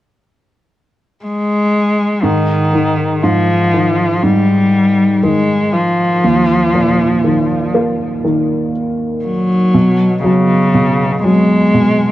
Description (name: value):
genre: pop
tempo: 60 BPM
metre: 4/4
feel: straight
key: unclear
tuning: A4 = 440 Hz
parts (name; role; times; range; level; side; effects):
- rich cello; melody; 1.2-12.1 s; C#3 to Ab3; -13 LUFS; left 1 dB; none
- warm upright piano; accompaniment; 2.2-12.1 s; Eb2 to Bb3; -14 LUFS; right 1 dB; none
room: light reverb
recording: worn, warbling old tape, cassette tape, warbly pitch drift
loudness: -11 LUFS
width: side -14 dB against mid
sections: 0.0-2.2 A section; 2.2-12.1 B section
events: none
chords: 0.0 N.C.; 2.2 Ab5; 6.2 Ebsus2; 9.7 Bsus2